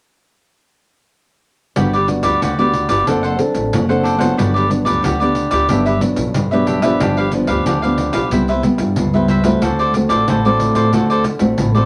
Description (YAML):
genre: samba and choro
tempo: 92 BPM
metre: 4/4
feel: straight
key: G major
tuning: A4 = 440 Hz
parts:
  - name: cavaquinho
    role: accompaniment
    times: 1.8-11.9 s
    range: D4 to F#5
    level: -20 LUFS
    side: equal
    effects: none
  - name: nylon-string guitar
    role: accompaniment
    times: 1.8-11.9 s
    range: G2 to A4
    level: -19 LUFS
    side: equal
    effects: none
  - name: upright bass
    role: bass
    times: 1.8-11.9 s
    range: F#1 to G2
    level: -24 LUFS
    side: equal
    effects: none
  - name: pandeiro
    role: percussion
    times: 1.8-11.9 s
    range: none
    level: -26 LUFS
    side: equal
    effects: none
room: wet small room reverb, RT60 0.5 s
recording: none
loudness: -16 LUFS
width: mono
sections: 1.8-11.9 A section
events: none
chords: 1.8 Gmaj7; 3.1 D7/F#; 4.4 Gmaj7; 5.7 Em9/G; 7.0 G7; 8.3 Cmaj7; 9.6 D7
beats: | 1.76 2.42 3.07 3.73 | 4.38 5.04 5.69 6.35 | 7.00 7.66 8.31 8.97 | 9.62 10.28 10.93 11.59